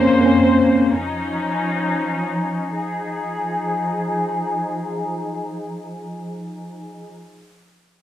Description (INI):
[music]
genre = hip hop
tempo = free time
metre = none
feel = none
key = F minor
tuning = A4 = 440 Hz
[part]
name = mellow tine electric piano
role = accompaniment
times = 0.0-0.9 s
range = Bb3 to Db4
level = -13 LUFS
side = equal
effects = medium stereo tremolo, low-pass filter, cassette tape
[part]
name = rich symphonic string section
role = sustained chords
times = 0.0-7.1 s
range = F2 to C5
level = -22 LUFS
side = left 1 dB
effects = low-pass filter, cassette tape
[sound]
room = light reverb, digital ambience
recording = home recording on cassette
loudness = -18 LUFS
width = side -11 dB against mid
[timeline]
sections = 0.0-2.7 A section; 2.7-6.4 B section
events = none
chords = 0.0 Bbmadd9/F; 0.9 Dbadd9/F; 2.7 Fm7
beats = free time